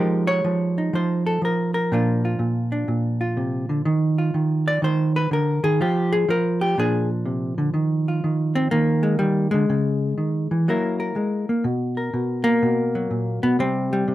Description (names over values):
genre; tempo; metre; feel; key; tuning
solo jazz; 123 BPM; 4/4; swing 66% on 8ths; Eb major; A4 = 441 Hz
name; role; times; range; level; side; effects
hollow-body jazz guitar; solo; 0.0-14.1 s; Bb2 to D5; -19 LUFS; equal; none
room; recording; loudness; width
light reverb; close, detailed microphones; -19 LUFS; side -14 dB against mid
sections
0.0-7.7 A section; 7.7-14.1 B section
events
hollow-body jazz guitar solo 0.0-7.7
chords
0.0 Fm9; 1.9 Bb; 3.8 Ebsus2; 5.8 N.C.; 6.8 Bb; 7.7 Ebsus2; 9.7 Dbm; 10.7 Gb7; 11.6 B5; 13.6 C5